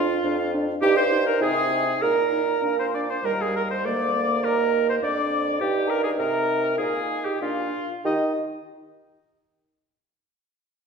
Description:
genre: quick classical-period movement for wind quintet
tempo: 92-104 BPM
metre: 2/4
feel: rubato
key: Eb major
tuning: A4 = 440 Hz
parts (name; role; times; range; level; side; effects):
- mellow hollow concert flute; melody; 0.0-8.4 s; Eb5 to D6; -32 LUFS; left 6 dB; none
- clear oboe; second line; 0.0-8.3 s; F4 to Eb5; -28 LUFS; left 4 dB; none
- mellow French horn; accompaniment; 0.0-8.3 s; G3 to G4; -30 LUFS; left 2 dB; none
- warm clarinet; accompaniment; 0.0-8.3 s; Eb4 to D5; -25 LUFS; right 6 dB; none
- mellow bassoon; bass; 0.0-8.3 s; D2 to Eb3; -28 LUFS; right 1 dB; none
room: wet recital hall reverb, RT60 1.4 s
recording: heard from further back in the room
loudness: -21 LUFS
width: side -5 dB against mid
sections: 0.0-8.0 A section; 8.0-9.3 B section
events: none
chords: 0.0 Dm/F; 0.8 Eb/G; 1.4 Ab/C; 2.0 Eb5/Bb; 2.6 Bb; 3.2 Eb; 3.8 Bb/D; 4.4 Eb5; 5.0 Dm/F; 5.6 Eb/G; 6.2 Cm; 6.8 Bb7sus4; 7.4 Bb; 8.0 Eb

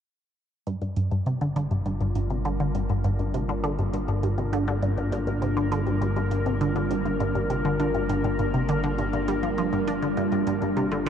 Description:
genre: ambient, sequencer-driven space music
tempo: 101 BPM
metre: 4/4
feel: straight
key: G minor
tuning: A4 = 440 Hz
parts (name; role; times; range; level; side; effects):
- evolving wavetable pad; sustained chords; 1.1-11.1 s; G3 to Bb4; -28 LUFS; equal; chorus, built-in reverb
- resonant blip pluck; riff; 0.7-11.1 s; G2 to D4; -26 LUFS; equal; phaser, ping-pong delay
- analog drone; bass; 1.7-11.1 s; G1; -30 LUFS; equal; chorus
- electronic hi-hat and woodblock; percussion; 0.7-11.1 s; none; -52 LUFS; right 2 dB; ping-pong delay
- wind-like tuned noise texture; texture; 1.1-11.1 s; D5; -47 LUFS; right 1 dB; none
room: wet huge ambient reverb, RT60 8.6 s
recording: dark, warm production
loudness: -23 LUFS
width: side -8 dB against mid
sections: 0.7-11.1 A section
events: fade-in on drum 0.7-11.1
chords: 0.7 Gm7

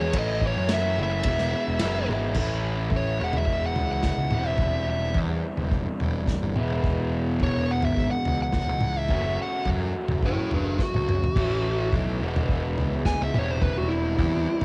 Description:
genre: indie rock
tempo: 107 BPM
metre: 4/4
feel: straight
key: E major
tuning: A4 = 439 Hz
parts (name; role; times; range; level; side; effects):
- fuzz lead guitar; melody; 0.0-14.6 s; D4 to G#5; -31 LUFS; equal; distortion, cassette tape
- crunchy overdriven guitar; riff; 0.0-14.6 s; E2 to G#4; -32 LUFS; equal; cassette tape
- fuzz picked electric bass; bass; 0.0-14.6 s; E1 to F#2; -30 LUFS; equal; overdrive
- unplugged drum kit; drums; 0.1-14.6 s; crash cymbal, kick drum, ride cymbal, snare drum, toms; -30 LUFS; equal; cassette tape
room: little or no reverb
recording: home recording on cassette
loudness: -25 LUFS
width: mono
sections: 0.0-2.4 A section; 2.4-14.6 B section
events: lead electric guitar solo 2.4-14.6; drum fill 10.8-11.4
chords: 0.1 A; 1.3 E; 2.4 A; 3.2 E; 4.3 C/E; 6.6 Eadd9; 9.1 F#m7; 11.4 A; 12.2 E; 13.3 C/E

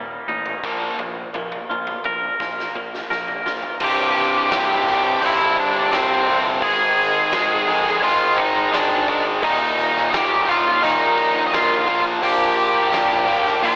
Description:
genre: quiet-loud alternative rock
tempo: 86 BPM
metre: 4/4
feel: straight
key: unclear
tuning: A4 = 439 Hz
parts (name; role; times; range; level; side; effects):
- twangy electric guitar; arpeggios; 0.0-3.8 s; Bb2 to Bb4; -28 LUFS; equal; tremolo
- distorted electric guitar; riff; 0.0-13.8 s; C2 to Bb3; -23 LUFS; equal; overdrive, slapback echo
- fuzz picked electric bass; bass; 0.0-13.8 s; C1 to F2; -34 LUFS; equal; overdrive
- oversized low-tuned drum kit; drums; 0.5-13.8 s; crash cymbal, hi-hat, kick drum, snare drum, toms; -32 LUFS; equal; none
- octave-fuzz lead guitar; melody; 3.8-13.8 s; C4 to Ab5; -21 LUFS; equal; distortion, tape echo
room: wet lush hall reverb, RT60 2.7 s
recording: big arena sound, telephone sound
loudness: -19 LUFS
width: mono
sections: 0.0-3.8 A section; 3.8-13.8 B section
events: drum fill 2.4-3.8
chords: 0.0 Eb; 0.6 Bb5; 3.8 C; 6.6 Ab5; 9.4 Eb; 11.9 Bb5

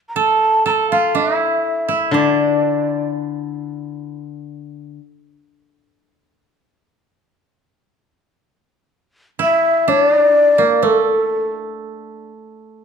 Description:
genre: japanese traditional, Japanese chamber music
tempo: 62 BPM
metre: 2/4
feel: uneven beats, rubato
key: D hirajoshi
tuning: A4 = 440 Hz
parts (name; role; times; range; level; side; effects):
- breathy mellow shakuhachi; melody; 0.1-3.1, 9.4-11.5 s; A4 to Bb5; -16 LUFS; left 2 dB; none
- koto; second line; 0.2-4.6, 9.4-12.8 s; A3 to A4; -20 LUFS; right 7 dB; none
- koto; accompaniment; 2.1-5.0 s; D3; -21 LUFS; left 8 dB; none
room: moderate recital hall reverb, RT60 1.3 s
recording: dark, warm production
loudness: -14 LUFS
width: side -6 dB against mid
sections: 0.0-7.9 A section; 7.9-12.8 B section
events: none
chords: none

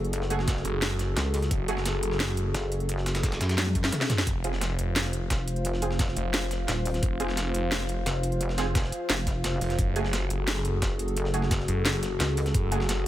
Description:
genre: dark technical drum and bass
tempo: 174 BPM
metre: 4/4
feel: straight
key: unclear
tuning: A4 = 440 Hz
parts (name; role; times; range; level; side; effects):
- dark analog pad; sustained chords; 0.0-13.1 s; F4 to F5; -33 LUFS; left 1 dB; chorus, sidechain pumping
- pulsing pluck wobble bass; bass; 0.0-12.5 s; Eb1 to Gb2; -28 LUFS; equal; chorus
- drum and bass drum kit; drums; 0.0-13.0 s; hi-hat, snare drum, toms; -30 LUFS; equal; none
- breakbeat sampler-style drum kit; drums; 0.1-13.0 s; hi-hat, snare drum; -35 LUFS; equal; high-pass filter on hats, high-pass filter on snare
- orchestra-hit-like synth stab; stabs; 0.3-1.8, 4.4-12.8 s; A3 to Ab4; -35 LUFS; right 3 dB; built-in reverb, tape echo
- electronic kick drum; drums; 0.5-12.6 s; none; -28 LUFS; equal; none
- phased detuned saw bass; bass; 0.6-13.0 s; F1 to Gb1; -29 LUFS; equal; phaser, tube saturation, sidechain pumping
room: light reverb, digital ambience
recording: none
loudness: -25 LUFS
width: side -13 dB against mid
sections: 0.0-13.1 A section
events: drum fill 3.6-4.3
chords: 0.0 Gbmadd9; 4.3 Fm; 9.8 Gbmadd9

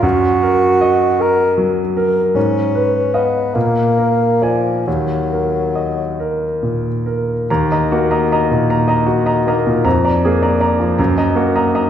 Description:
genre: classical, romantic duo for bassoon and grand piano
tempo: 44-54 BPM (dotted quarters)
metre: 6/8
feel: rubato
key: Eb minor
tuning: A4 = 440 Hz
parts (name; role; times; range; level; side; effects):
- warm bassoon; melody; 0.0-6.2 s; F3 to Bb4; -16 LUFS; equal; none
- clear concert grand piano; accompaniment; 0.0-11.9 s; Eb2 to Bb5; -14 LUFS; equal; none
room: wet recital hall reverb, RT60 1.6 s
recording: heard from further back in the room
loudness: -13 LUFS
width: side -9 dB against mid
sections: 0.0-7.5 A section; 7.5-11.9 B section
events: none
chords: 0.0 Ebm/Gb; 2.4 Fm7b5/Ab; 3.6 Bb7; 4.9 Ebm; 9.9 Bb7/F; 11.0 Ebm/Gb

